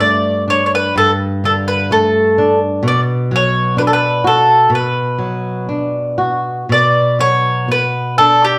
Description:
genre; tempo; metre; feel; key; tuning
fado-style ballad; 63 BPM; 2/4; uneven beats, rubato; B minor; A4 = 441 Hz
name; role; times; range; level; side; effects
mandolin; melody; 0.0-8.6 s; G4 to D5; -15 LUFS; equal; none
flamenco guitar; accompaniment; 0.0-8.6 s; G2 to F#4; -20 LUFS; equal; none
room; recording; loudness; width
wet large studio reverb, RT60 0.8 s; band playing live in one room; -14 LUFS; mono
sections
0.0-6.7 A section; 6.7-8.6 A section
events
none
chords
0.0 Gsus2; 2.8 Bm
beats
| 0.93 1.89 | 2.84 3.77 | 4.71 5.69 | 6.68 7.68

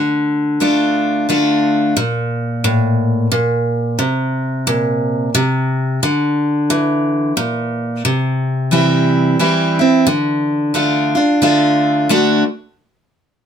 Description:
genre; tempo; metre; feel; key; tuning
country; 89 BPM; 3/4; swing 60% on 8ths; D minor; A4 = 441 Hz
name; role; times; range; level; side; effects
picked steel-string acoustic guitar; solo; 0.0-12.4 s; A2 to F#4; -13 LUFS; equal; none
room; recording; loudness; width
moderate studio reverb, RT60 0.6 s; close, detailed microphones; -13 LUFS; side -8 dB against mid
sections
0.0-8.0 A section; 8.0-12.1 B section; 12.1-13.5 C section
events
none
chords
0.0 Dm; 2.0 N.C.; 4.0 Bbsus2; 6.0 Bb; 8.0 C; 10.1 Dm; 12.1 D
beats
0.61 1.28 | 1.96 2.64 3.31 | 3.99 4.67 5.34 | 6.02 6.70 7.37 | 8.05 8.72 9.40 | 10.08 10.75 11.43 | 12.10

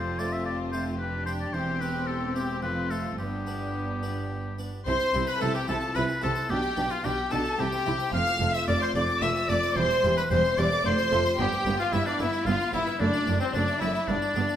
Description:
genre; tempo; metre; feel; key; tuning
classical, baroque-style concerto movement with solo episodes; 110 BPM; 3/4; straight; C major; A4 = 440 Hz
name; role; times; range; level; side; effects
clear oboe; melody; 0.0-14.6 s; C4 to F5; -31 LUFS; left 2 dB; none
rich chamber violin section; melody; 0.0-14.6 s; C5 to F6; -33 LUFS; left 3 dB; none
rich studio violin section; second line; 0.0-14.6 s; C4 to F5; -30 LUFS; left 1 dB; none
harpsichord; accompaniment; 0.0-14.6 s; E2 to D5; -35 LUFS; equal; none
rich chamber viola section; accompaniment; 0.0-14.4 s; G3 to E4; -35 LUFS; equal; none
rich chamber double bass section; bass; 0.0-14.4 s; E1 to C2; -33 LUFS; right 3 dB; none
warm studio cello section; bass; 0.0-14.4 s; E2 to C3; -33 LUFS; right 2 dB; none
room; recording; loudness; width
wet recital hall reverb, RT60 1.6 s; none; -24 LUFS; side -10 dB against mid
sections
0.0-4.9 A section; 4.9-14.6 B section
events
none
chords
0.0 F; 1.0 G7/F; 1.5 C/E; 2.6 F; 3.2 G; 4.9 C; 6.5 G/B; 7.6 C; 8.1 F; 9.8 C/E; 10.9 F; 11.4 G; 13.0 D/F#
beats
0.46 1.00 | 1.54 2.08 2.63 | 3.19 3.75 4.31 | 4.87 5.41 5.96 | 6.50 7.05 7.59 | 8.13 8.68 9.22 | 9.76 10.31 10.85 | 11.39 11.93 12.47 | 13.01 13.55 14.09

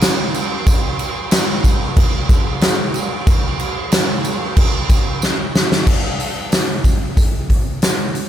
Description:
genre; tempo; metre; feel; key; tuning
rock; 92 BPM; 4/4; straight; none; none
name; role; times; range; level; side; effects
huge arena drum kit; drums; 0.0-8.3 s; crash cymbal, hi-hat, kick drum, snare drum; -14 LUFS; equal; none
tambourine; percussion; 0.0-8.3 s; none; -32 LUFS; right 4 dB; none
room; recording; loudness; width
light reverb, studio reverb; none; -14 LUFS; side -11 dB against mid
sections
0.0-5.9 A section; 5.9-8.3 B section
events
drum fill 5.2-5.9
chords
none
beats
0.02 | 0.67 1.32 1.97 2.62 | 3.27 3.92 4.57 5.22 | 5.87 6.52 7.17 7.82

